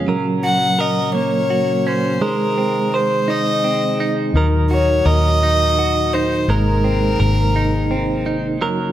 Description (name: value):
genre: six-eight pop ballad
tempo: 56 BPM (dotted quarters)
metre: 6/8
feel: straight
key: unclear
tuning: A4 = 438 Hz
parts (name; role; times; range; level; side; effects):
- direct-recorded clean electric guitar; accompaniment; 0.0-8.9 s; Eb3 to C5; -20 LUFS; right 3 dB; harmonic tremolo
- percussive tonewheel organ; sustained chords; 0.0-8.9 s; Bb2 to Ab4; -23 LUFS; left 2 dB; chorus vibrato, slow rotary speaker
- warm violin; melody; 0.5-8.3 s; Bb4 to Gb5; -20 LUFS; left 1 dB; tape echo
- vintage muted fingered electric bass; bass; 4.3-8.9 s; Gb1 to Eb2; -18 LUFS; left 1 dB; none
room: light reverb, digital ambience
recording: none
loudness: -15 LUFS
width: side -12 dB against mid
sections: 0.0-8.9 A section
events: none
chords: 0.1 Gb; 2.2 Ab; 4.4 Ebm; 6.5 Abadd9